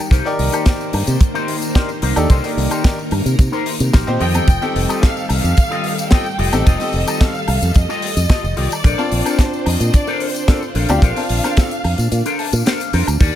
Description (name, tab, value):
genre	nu-disco, nu disco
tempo	110 BPM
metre	4/4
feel	straight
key	unclear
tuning	A4 = 439 Hz
part	string machine, full ensemble	sustained chords	0.0-13.4 s	Eb3 to D6	-26 LUFS	equal	ensemble chorus, sidechain pumping
part	electric guitar with an envelope filter	riff	0.0-13.4 s	D4 to A5	-25 LUFS	left 4 dB	analog chorus
part	fingered electric bass with an envelope filter	bass	0.1-13.3 s	F1 to C3	-18 LUFS	equal	sidechain pumping
part	kick drum	drums	0.1-13.3 s	none	-12 LUFS	equal	none
part	tight funk drum kit	drums	0.1-13.3 s	crash cymbal, hi-hat, snare drum, tambourine, woodblock	-24 LUFS	left 1 dB	none
part	bright concert grand piano	accompaniment	0.3-11.7 s	C4 to A5	-23 LUFS	left 2 dB	sidechain pumping, ping-pong delay
part	warm symphonic violin section	melody	4.2-12.7 s	C5 to G5	-25 LUFS	right 1 dB	ping-pong delay
room	small room ambience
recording	faint mains hum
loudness	-14 LUFS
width	side -12 dB against mid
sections	0.0-13.4 A section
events	kick drops out 12.1-13.2; clean electric guitar fill 12.1-13.2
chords	0.1 Cm7; 4.2 F9; 8.8 Bbmaj9